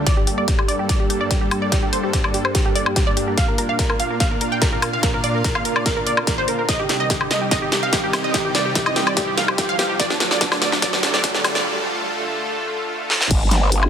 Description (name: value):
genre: heavy wobble dubstep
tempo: 145 BPM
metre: 4/4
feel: half-time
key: G minor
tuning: A4 = 440 Hz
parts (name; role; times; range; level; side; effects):
- wide unison pluck; melody; 0.0-11.6 s; D4 to G5; -22 LUFS; right 1 dB; tape echo
- supersaw pad; sustained chords; 0.0-13.9 s; C2 to F5; -25 LUFS; right 1 dB; sidechain pumping, low-pass filter
- swell and riser; sound effects; 0.0-11.7 s; none; -31 LUFS; right 1 dB; none
- big-room dance drum kit; drums; 0.1-13.9 s; crash cymbal, hi-hat, snare drum, woodblock; -22 LUFS; left 1 dB; high-pass filter on snare, high-pass filter on hats, high-pass filter on perc, high-pass filter on cymbals
- electronic kick drum; drums; 0.1-13.4 s; none; -22 LUFS; equal; none
- growl bass; bass; 13.3-13.9 s; G1; -17 LUFS; equal; chorus, overdrive
room: light reverb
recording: dense, heavily limited modern master, high-pass filter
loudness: -17 LUFS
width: side -8 dB against mid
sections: 0.1-13.3 A section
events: build-up 0.1-13.3; drum fill 0.1-11.7, 13.1; filter sweep 0.1-13.3; riser 3.7-11.7; break 11.7-13.3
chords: 0.1 Gmadd9; 3.4 Bb; 6.7 Cm; 10.0 Dm; 13.3 Gm